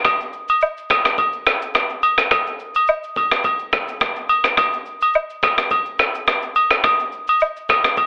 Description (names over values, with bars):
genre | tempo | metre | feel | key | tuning
afrobeats | 106 BPM | 4/4 | swing 55% on 16ths | none | none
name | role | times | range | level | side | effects
jungle sampler-style drum kit | drums | 0.0-8.1 s | finger snaps, kick drum, rim click, shaker | -20 LUFS | equal | overdrive
agogo bells and woodblock | percussion | 0.1-8.1 s | none | -21 LUFS | equal | none
room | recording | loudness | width
little or no reverb | dry, gritty hardware recording, cassette tape, telephone sound | -19 LUFS | mono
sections
0.0-8.1 A section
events
none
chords
none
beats
| 0.05 0.62 1.18 1.75 | 2.31 2.88 3.45 4.01 | 4.58 5.14 5.71 6.28 | 6.84 7.41 7.97